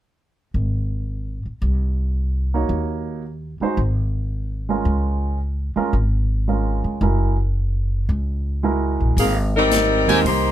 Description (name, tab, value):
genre	jazz, big band swing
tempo	111 BPM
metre	4/4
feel	swing 69% on 8ths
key	Ab major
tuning	A4 = 440 Hz
part	upright bass	bass	0.5-10.5 s	Gb1 to Eb2	-21 LUFS	equal	none
part	warm grand piano	accompaniment	2.5-10.2 s	Eb3 to Db5	-23 LUFS	right 5 dB	none
part	warm saxophone section	melody	9.2-10.5 s	Eb3 to C5	-17 LUFS	left 2 dB	plate reverb
part	swinging big-band drum kit	drums	9.2-10.4 s	hi-hat, snare drum	-28 LUFS	left 2 dB	none
part	clear trumpet section	stabs	10.1-10.2 s	G4 to Ab5	-21 LUFS	equal	none
room	light reverb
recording	none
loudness	-19 LUFS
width	side -12 dB against mid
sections	0.6-9.2 A section; 9.2-10.5 B section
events	none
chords	0.6 Ab; 2.7 Ebm7; 3.8 Bbm7/Ab; 7.0 Gb9; 9.2 Abmaj9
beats	| 0.55 1.09 1.63 2.17 | 2.71 3.25 3.79 4.32 | 4.86 5.40 5.94 6.48 | 7.02 7.56 8.10 8.63 | 9.17 9.71 10.25